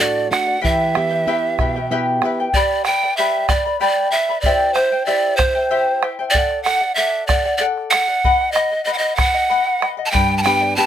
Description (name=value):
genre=andean folk, Andean ensemble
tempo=63 BPM (dotted quarters)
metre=6/8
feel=straight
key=unclear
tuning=A4 = 440 Hz
part: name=breathy reedy pan flute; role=melody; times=0.0-10.9 s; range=C5 to A5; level=-17 LUFS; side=right 2 dB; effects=none
part: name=charango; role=accompaniment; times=0.0-10.9 s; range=E4 to B5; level=-21 LUFS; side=left 5 dB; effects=none
part: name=nylon-string guitar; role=accompaniment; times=0.0-2.5, 10.1-10.9 s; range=G2 to G4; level=-23 LUFS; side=right 3 dB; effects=none
part: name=bombo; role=percussion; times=0.2-10.6 s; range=none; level=-21 LUFS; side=right 1 dB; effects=none
room=little or no reverb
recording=close, detailed microphones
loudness=-15 LUFS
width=side -10 dB against mid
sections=0.0-2.5 A section; 2.5-10.9 A section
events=none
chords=0.0 D; 0.6 Em; 2.5 G; 4.4 C; 6.3 D; 8.2 B; 10.1 G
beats=| 0.64 1.59 | 2.54 3.49 | 4.44 5.39 | 6.34 7.29 | 8.24 9.19 | 10.14